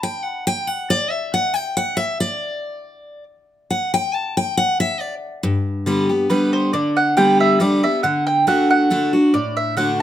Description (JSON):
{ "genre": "bluegrass", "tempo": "138 BPM", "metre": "3/4", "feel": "straight", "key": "G major", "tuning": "A4 = 441 Hz", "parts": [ { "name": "picked steel-string acoustic guitar", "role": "accompaniment", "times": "0.0-10.0 s", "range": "G2 to A5", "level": "-18 LUFS", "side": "left 1 dB", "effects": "none" }, { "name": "mandolin", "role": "melody", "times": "6.3-10.0 s", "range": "B4 to G5", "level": "-18 LUFS", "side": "right 2 dB", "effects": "none" } ], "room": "light reverb", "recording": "close, detailed microphones", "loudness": "-16 LUFS", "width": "side -11 dB against mid", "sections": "0.0-5.4 A section; 5.4-10.0 A section", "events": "steel-string acoustic guitar solo 0.0-5.4; mandolin solo 5.4-10.0", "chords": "0.0 N.C.; 5.4 G; 8.0 D" }